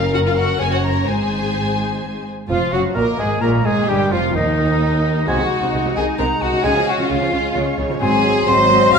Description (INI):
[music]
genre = quick classical-period movement for symphony orchestra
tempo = 130 BPM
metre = 3/4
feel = straight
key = Db major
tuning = A4 = 440 Hz
[part]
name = rich chamber violin section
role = melody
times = 0.0-9.0 s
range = Bb4 to Bb5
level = -29 LUFS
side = left 3 dB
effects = none
[part]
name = rich chamber viola section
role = accompaniment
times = 0.0-9.0 s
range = Db3 to Db5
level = -24 LUFS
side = left 1 dB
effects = none
[part]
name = dark chamber double bass section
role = bass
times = 0.0-9.0 s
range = F1 to Eb2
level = -24 LUFS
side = right 3 dB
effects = none
[part]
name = rich chamber cello section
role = bass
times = 0.0-9.0 s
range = Eb2 to Db3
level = -23 LUFS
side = right 2 dB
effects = none
[part]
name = rich chamber violin section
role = second line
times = 0.1-9.0 s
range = Eb4 to F5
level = -21 LUFS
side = left 2 dB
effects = none
[part]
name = bright concert flute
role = second line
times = 2.5-9.0 s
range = Eb5 to F6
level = -22 LUFS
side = left 1 dB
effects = none
[part]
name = clear oboe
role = second line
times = 2.5-9.0 s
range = Eb4 to C6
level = -25 LUFS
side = right 1 dB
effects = none
[part]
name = mellow bassoon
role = accompaniment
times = 2.5-9.0 s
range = Eb3 to Bb3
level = -25 LUFS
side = right 1 dB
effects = none
[part]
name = mellow French horn section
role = sustained chords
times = 2.5-9.0 s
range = Eb3 to Eb4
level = -24 LUFS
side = left 2 dB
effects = none
[sound]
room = wet recital hall reverb, RT60 1.6 s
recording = minimal, uncompressed stereo recording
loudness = -15 LUFS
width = side -6 dB against mid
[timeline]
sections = 0.0-2.5 A section; 2.5-9.0 B section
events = none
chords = 0.0 Gb; 1.1 Ab; 2.5 Db/F; 3.9 Eb; 5.3 Ab7/C; 6.7 Db; 8.0 Ab7